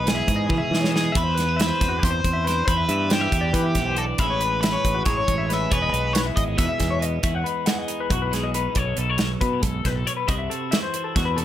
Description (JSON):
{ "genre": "math rock and midwest emo", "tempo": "276 BPM (eighths)", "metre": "7/8", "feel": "straight", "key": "E major", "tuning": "A4 = 440 Hz", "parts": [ { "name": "biting overdriven guitar", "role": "melody", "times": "0.0-7.0 s", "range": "G4 to E5", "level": "-26 LUFS", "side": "equal", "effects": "digital delay" }, { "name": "twelve-string electric guitar", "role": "accompaniment", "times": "0.0-11.4 s", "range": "E2 to A4", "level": "-30 LUFS", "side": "right 8 dB", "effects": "spring reverb" }, { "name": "electric guitar through a small old amp", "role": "arpeggios", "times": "0.0-11.4 s", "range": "F#4 to F#5", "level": "-27 LUFS", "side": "left 8 dB", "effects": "digital delay" }, { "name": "growling fingered electric bass", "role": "bass", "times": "0.0-11.4 s", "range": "E1 to E3", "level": "-26 LUFS", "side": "equal", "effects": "overdrive" }, { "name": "modern studio drum kit", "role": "drums", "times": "0.1-11.4 s", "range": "hi-hat, kick drum, snare drum, toms", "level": "-24 LUFS", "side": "equal", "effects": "none" } ], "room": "light reverb", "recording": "none", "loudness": "-20 LUFS", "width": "side -12 dB against mid", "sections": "0.0-7.2 A section; 7.2-11.4 B section", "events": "drum fill 0.5-1.1", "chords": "0.0 Emaj7; 1.1 Cmaj9/E; 4.2 Amaj7; 5.7 Emaj7; 7.2 Emaj9; 8.8 B9; 10.3 Am6/C", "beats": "0.06 0.28 0.50 0.71 0.93 | 1.15 1.36 1.58 1.80 2.02 2.23 2.45 | 2.67 2.89 3.10 3.32 3.54 3.75 3.97 | 4.19 4.41 4.62 4.84 5.06 5.28 5.49 | 5.71 5.93 6.15 6.37 6.58 6.80 7.02 | 7.24 7.45 7.67 7.89 8.11 8.32 8.54 | 8.76 8.98 9.20 9.41 9.63 9.85 10.07 | 10.29 10.51 10.72 10.94 11.16 11.38" }